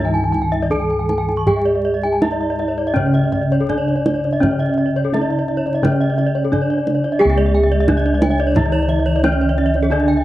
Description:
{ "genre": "Balinese gamelan", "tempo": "79-88 BPM", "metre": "4/4", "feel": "straight", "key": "C# pelog", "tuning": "A4 = 439 Hz", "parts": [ { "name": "gamelan-type bronze metallophone", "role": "melody", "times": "0.0-10.2 s", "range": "C#4 to A4-40c", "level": "-20 LUFS", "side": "right 1 dB", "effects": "none" }, { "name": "gamelan-type bronze metallophone", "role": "accompaniment", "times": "0.0-10.2 s", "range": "C#3 to G#3-45c", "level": "-25 LUFS", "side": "left 1 dB", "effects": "none" }, { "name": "gamelan-type bronze metallophone", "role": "arpeggios", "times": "0.0-10.2 s", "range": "A4-40c to A5-40c", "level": "-24 LUFS", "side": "left 4 dB", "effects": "none" }, { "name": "gamelan-type bossed gongs", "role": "bass", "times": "0.0-10.2 s", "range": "C#2 to G#4-45c", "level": "-19 LUFS", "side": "equal", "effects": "none" }, { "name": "gamelan-type bronze metallophone", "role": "arpeggios", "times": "0.1-10.2 s", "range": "A4-40c to C#6", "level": "-25 LUFS", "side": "right 4 dB", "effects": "none" }, { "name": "kendang", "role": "percussion", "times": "0.2-9.8 s", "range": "none", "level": "-23 LUFS", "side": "right 1 dB", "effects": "none" }, { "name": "mellow hollow bass bansuri", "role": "second line", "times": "8.2-10.2 s", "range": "C#5 to E5-47c", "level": "-27 LUFS", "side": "right 3 dB", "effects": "analog delay" } ], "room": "moderate small room reverb, RT60 0.6 s", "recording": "vinyl crackle, nothing above 10.7 kHz", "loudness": "-15 LUFS", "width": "side -15 dB against mid", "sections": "0.0-7.2 A section; 7.2-10.2 B section", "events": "none", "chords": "none", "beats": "0.71 | 1.47 2.22 2.96 3.70 | 4.42 5.13 5.83 6.52 | 7.21 7.88 8.56 9.24 | 9.92" }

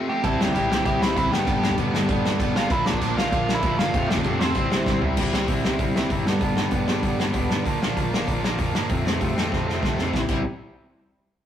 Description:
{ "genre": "punk rock", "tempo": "194 BPM", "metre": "4/4", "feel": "straight", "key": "C mixolydian", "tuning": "A4 = 440 Hz", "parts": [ { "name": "distorted electric guitar", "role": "riff", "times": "0.0-10.4 s", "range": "F2 to E4", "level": "-26 LUFS", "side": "left 1 dB", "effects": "distortion" }, { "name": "nasal lead guitar with a parked wah", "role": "melody", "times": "0.1-5.0 s", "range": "C4 to A5", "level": "-26 LUFS", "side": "right 2 dB", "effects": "overdrive" }, { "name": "distorted electric guitar", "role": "riff", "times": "0.2-10.4 s", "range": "F2 to E4", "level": "-28 LUFS", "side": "right 4 dB", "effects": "distortion" }, { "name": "overdriven picked electric bass", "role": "bass", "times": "0.2-10.4 s", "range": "F1 to G2", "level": "-32 LUFS", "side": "equal", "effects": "none" }, { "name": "loose indie drum kit", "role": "drums", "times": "0.2-10.4 s", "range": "crash cymbal, hi-hat, kick drum, snare drum, toms", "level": "-24 LUFS", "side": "left 1 dB", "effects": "none" } ], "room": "moderate stone room reverb, RT60 1.3 s", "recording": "rough rehearsal-room recording", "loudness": "-20 LUFS", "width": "side -10 dB against mid", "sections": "0.0-5.2 A section; 5.2-10.1 B section; 10.1-11.4 C section", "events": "drum fill 4.9-5.2, 9.5-10.1", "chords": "0.2 C; 1.3 G; 2.7 Bb; 3.9 F; 4.6 C; 6.3 G; 7.7 Bb; 8.9 F; 10.1 C", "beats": "| 0.23 0.54 0.85 1.16 | 1.47 1.78 2.09 2.40 | 2.71 3.01 3.32 3.63 | 3.94 4.25 4.55 4.86 | 5.17 5.48 5.79 6.10 | 6.41 6.72 7.03 7.34 | 7.65 7.96 8.27 8.58 | 8.89 9.20 9.51 9.82 | 10.13" }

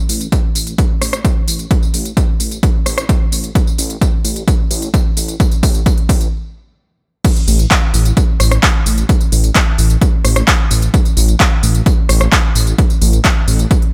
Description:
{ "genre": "EDM, festival progressive house", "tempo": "130 BPM", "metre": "4/4", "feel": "straight", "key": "unclear", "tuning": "A4 = 440 Hz", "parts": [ { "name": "detuned saw bass", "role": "bass", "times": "0.1-13.7 s", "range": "A1", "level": "-17 LUFS", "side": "equal", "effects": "chorus, sidechain pumping, high-pass filter" }, { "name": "big-room dance drum kit", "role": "drums", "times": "0.1-13.9 s", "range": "crash cymbal, handclaps, hi-hat, rim click, tambourine", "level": "-20 LUFS", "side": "equal", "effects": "overdrive" }, { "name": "electronic kick drum", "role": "drums", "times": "0.3-13.8 s", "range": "none", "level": "-16 LUFS", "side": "equal", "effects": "overdrive" } ], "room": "little or no reverb", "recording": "none", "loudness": "-14 LUFS", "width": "mono", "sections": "0.0-7.2 A section; 7.2-13.9 B section", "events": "build-up 0.0-7.2; drum fill 3.6-6.3; stop 6.3-7.2; drop 7.2-13.9", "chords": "none", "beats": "0.32 0.78 1.25 | 1.71 2.17 2.63 3.09 | 3.55 4.01 4.48 4.94 | 5.40 5.86 6.32 6.78 | 7.25 7.71 8.17 8.63 | 9.09 9.55 10.02 10.48 | 10.94 11.40 11.86 12.32 | 12.78 13.25 13.71" }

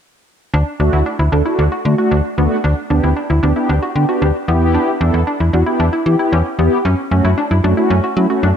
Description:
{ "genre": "synth-pop", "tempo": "114 BPM", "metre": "4/4", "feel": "straight", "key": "D major", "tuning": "A4 = 440 Hz", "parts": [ { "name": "analog pluck", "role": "arpeggios", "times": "0.5-8.6 s", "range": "B3 to F#4", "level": "-21 LUFS", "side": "equal", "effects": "chorus, digital delay" }, { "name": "slap-like FM bass", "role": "bass", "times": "0.5-8.5 s", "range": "D2 to F#3", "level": "-14 LUFS", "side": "equal", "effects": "none" }, { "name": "mellow synth brass", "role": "accompaniment", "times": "0.8-8.5 s", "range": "A3 to A4", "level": "-17 LUFS", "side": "equal", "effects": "chorus" } ], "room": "wet recital hall reverb, RT60 1.4 s", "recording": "dark, warm production", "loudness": "-13 LUFS", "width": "side -8 dB against mid", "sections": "0.5-8.6 A section", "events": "none", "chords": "0.5 D; 2.6 G/D; 4.5 Em; 6.9 F#m", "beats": "| 0.54 1.06 1.59 2.11 | 2.64 3.17 3.69 4.22 | 4.75 5.27 5.80 6.33 | 6.85 7.38 7.90 8.43" }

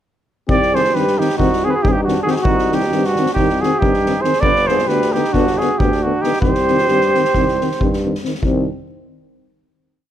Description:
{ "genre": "balkan folk, Balkan brass band", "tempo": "272 BPM (eighths)", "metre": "9/8", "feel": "straight", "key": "C hungarian minor", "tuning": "A4 = 440 Hz", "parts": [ { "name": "mellow trumpet", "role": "melody", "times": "0.5-8.0 s", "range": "F#4 to D5", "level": "-17 LUFS", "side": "right 3 dB", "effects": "none" }, { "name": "mellow flugelhorn", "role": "second line", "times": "0.5-8.0 s", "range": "D4 to B4", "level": "-23 LUFS", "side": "left 5 dB", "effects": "none" }, { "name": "dark euphonium", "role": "accompaniment", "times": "0.5-8.7 s", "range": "D3 to Eb3", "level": "-24 LUFS", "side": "right 6 dB", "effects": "none" }, { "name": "mellow euphonium", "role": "accompaniment", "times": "0.5-8.7 s", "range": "B3 to C4", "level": "-23 LUFS", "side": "left 7 dB", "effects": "none" }, { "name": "clear tuba", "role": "bass", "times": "0.5-8.7 s", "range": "G1 to G2", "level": "-22 LUFS", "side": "equal", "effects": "none" }, { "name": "soft-mallet drum kit", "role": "percussion", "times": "0.5-8.7 s", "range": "kick drum, snare drum", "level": "-22 LUFS", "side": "equal", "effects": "none" } ], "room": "light reverb", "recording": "none", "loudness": "-14 LUFS", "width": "side -11 dB against mid", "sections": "0.5-8.4 A section; 8.4-10.1 final chord", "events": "none", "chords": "0.5 Cm; 4.4 G; 6.4 Cm", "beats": "| 0.49 0.71 0.92 1.14 1.36 1.58 1.80 2.02 2.23 | 2.45 2.67 2.89 3.11 3.33 3.55 3.77 3.99 4.21 | 4.43 4.65 4.87 5.09 5.32 5.54 5.76 5.98 6.20 | 6.42 6.64 6.87 7.09 7.31 7.53 7.75 7.97 8.20 | 8.42 8.64" }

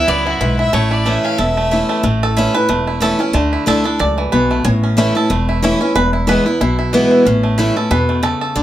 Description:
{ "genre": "bluegrass", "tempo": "184 BPM", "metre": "4/4", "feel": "swing 56% on 8ths", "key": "A major", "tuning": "A4 = 440 Hz", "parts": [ { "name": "bluegrass banjo", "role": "melody", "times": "0.0-8.6 s", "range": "E3 to D5", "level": "-19 LUFS", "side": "right 2 dB", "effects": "plate reverb" }, { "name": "clear fiddle", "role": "melody", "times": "0.0-2.0 s", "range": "F#4 to F5", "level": "-19 LUFS", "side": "equal", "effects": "plate reverb" }, { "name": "clear fiddle", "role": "second line", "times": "0.0-1.9 s", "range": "E4", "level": "-25 LUFS", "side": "left 1 dB", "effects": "none" }, { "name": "picked steel-string acoustic guitar", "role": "accompaniment", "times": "0.0-8.6 s", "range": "E2 to E4", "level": "-16 LUFS", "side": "left 1 dB", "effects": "none" }, { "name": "upright bass", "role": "bass", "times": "0.0-8.6 s", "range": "E1 to E2", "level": "-19 LUFS", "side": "equal", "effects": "none" } ], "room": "moderate studio reverb, RT60 0.5 s", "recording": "none", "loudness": "-13 LUFS", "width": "side -12 dB against mid", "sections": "0.0-2.0 A section; 2.0-8.6 B section", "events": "five-string banjo solo 2.0-8.6", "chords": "0.0 E; 0.7 A; 3.3 Dsus2; 4.7 A; 6.0 E; 7.3 A", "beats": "0.08 0.41 | 0.73 1.06 1.39 1.71 | 2.04 2.37 2.69 3.02 | 3.35 3.67 4.00 4.33 | 4.65 4.98 5.30 5.63 | 5.96 6.28 6.61 6.93 | 7.26 7.58 7.91 8.24 | 8.56" }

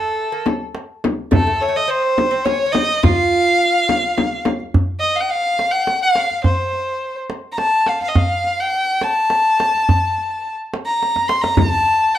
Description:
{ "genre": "Persian modal ensemble", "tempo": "70 BPM (dotted quarters)", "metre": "6/8", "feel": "straight", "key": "F dastgah homayun", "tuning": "A4 = 440 Hz", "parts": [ { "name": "warm violin", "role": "melody", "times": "0.0-12.2 s", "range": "A4 to C6", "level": "-17 LUFS", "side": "left 1 dB", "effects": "slapback echo, plate reverb" }, { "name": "lute", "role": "second line", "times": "0.0-4.4 s", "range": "A3 to F4", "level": "-22 LUFS", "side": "right 6 dB", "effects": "none" }, { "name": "frame drum", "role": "percussion", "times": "0.5-4.6, 11.6-11.7 s", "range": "none", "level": "-20 LUFS", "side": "left 3 dB", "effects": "none" }, { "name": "tombak", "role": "percussion", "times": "0.5-11.9 s", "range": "none", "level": "-19 LUFS", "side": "right 2 dB", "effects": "none" } ], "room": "moderate small room ambience, RT60 0.5 s", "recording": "none", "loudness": "-15 LUFS", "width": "side -12 dB against mid", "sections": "0.0-4.7 A section; 4.7-12.2 B section", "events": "drum fill 11.0-11.6", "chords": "none", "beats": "0.46 | 1.32 2.17 | 3.03 3.89 | 4.74 5.60 | 6.45 7.31 | 8.16 9.02 | 9.87 10.72 | 11.58" }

